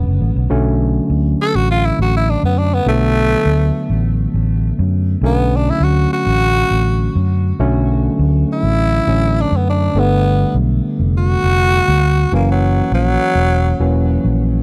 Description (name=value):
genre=straight-eighth soul blues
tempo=102 BPM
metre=4/4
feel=straight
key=B minor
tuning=A4 = 439 Hz
part: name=growling tenor saxophone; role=melody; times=0.0-14.1 s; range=F#3 to A4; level=-21 LUFS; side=equal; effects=none
part: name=overdriven tine electric piano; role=accompaniment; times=0.0-14.6 s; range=D3 to C#4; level=-22 LUFS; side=equal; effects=none
part: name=vintage muted fingered electric bass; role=bass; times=0.0-14.6 s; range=E1 to F#2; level=-18 LUFS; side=equal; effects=none
room=little or no reverb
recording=dry, close 1970s-style studio recording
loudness=-15 LUFS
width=mono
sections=0.5-14.6 A section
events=tenor saxophone solo 0.0-14.6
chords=0.0 Bm9; 10.0 G7; 12.3 F#7